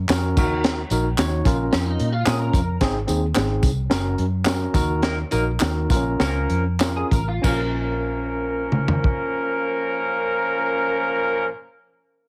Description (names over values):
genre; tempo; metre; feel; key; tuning
uptempo 1960s-style soul; 94-111 BPM; 4/4; straight; Bb minor; A4 = 440 Hz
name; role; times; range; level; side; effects
vintage muted fingered electric bass; bass; 0.0-11.5 s; Gb1 to Bb2; -26 LUFS; equal; none
tine electric piano; accompaniment; 0.1-11.5 s; C4 to Db5; -29 LUFS; equal; overdrive, plate reverb
crunchy breakbeat drum kit; drums; 0.1-9.2 s; crash cymbal, hi-hat, kick drum, snare drum, toms; -25 LUFS; equal; none
handclaps and tambourine; percussion; 0.1-7.7 s; none; -32 LUFS; equal; none
electric guitar through a small old amp; riff; 1.7-2.8, 7.0-7.6 s; Db4 to Bb4; -31 LUFS; equal; ensemble chorus
mellow horn section; second line; 5.0-11.5 s; F3 to Bb4; -25 LUFS; equal; slapback echo
room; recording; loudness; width
light reverb; heavily compressed radio sound, multiband compression; -22 LUFS; mono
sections
0.0-7.4 A section; 7.4-12.3 B section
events
slowing down 2.8-7.4; band accent 5.0-7.4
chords
0.4 Ebm; 1.5 Bbm; 2.8 Ab; 3.9 Gb; 4.7 Ebm; 5.9 Bbm